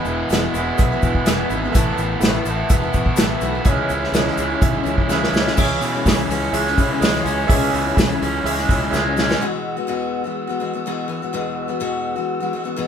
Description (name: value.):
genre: folk rock and heartland rock.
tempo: 125 BPM.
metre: 4/4.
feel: straight.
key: E major.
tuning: A4 = 440 Hz.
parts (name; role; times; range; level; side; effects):
bright upright piano; accompaniment; 0.0-9.3 s; G#4 to B5; -29 LUFS; right 7 dB; none.
picked steel-string acoustic guitar; accompaniment; 0.0-12.9 s; E2 to F#4; -25 LUFS; left 5 dB; none.
mellow tonewheel organ; sustained chords; 0.0-12.9 s; G#4 to E6; -30 LUFS; right 1 dB; fast rotary speaker.
raw garage guitar; riff; 0.0-9.4 s; E2 to E4; -21 LUFS; right 2 dB; overdrive.
fingered electric bass; bass; 0.1-9.3 s; E1 to C#3; -26 LUFS; equal; none.
tube shaker; percussion; 0.1-9.3 s; none; -37 LUFS; left 8 dB; none.
unplugged drum kit; drums; 0.3-9.4 s; crash cymbal, hi-hat, kick drum, snare drum; -19 LUFS; equal; none.
room: light reverb.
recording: band playing live in one room.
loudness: -17 LUFS.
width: side -8 dB against mid.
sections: 0.0-5.6 A section; 5.6-9.4 B section; 9.4-12.9 C section.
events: upright piano fill 4.1-5.6; drum fill 5.1-5.6, 8.9-9.4.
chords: 0.0 E; 1.7 Asus2; 3.7 C#m; 9.4 Eadd9.